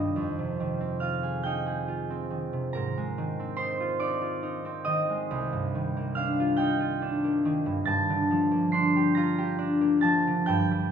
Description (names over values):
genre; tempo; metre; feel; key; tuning
classical; 47 BPM (dotted quarters); 6/8; rubato; unclear; A4 = 440 Hz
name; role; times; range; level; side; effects
concert harp; accompaniment; 0.0-10.9 s; C2 to C7; -25 LUFS; equal; none
room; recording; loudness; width
wet recital hall reverb, RT60 1.6 s; none; -25 LUFS; side -8 dB against mid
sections
0.0-10.9 A section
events
none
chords
0.2 Fm9; 2.8 Ab69; 5.3 Cm11; 7.9 Gm9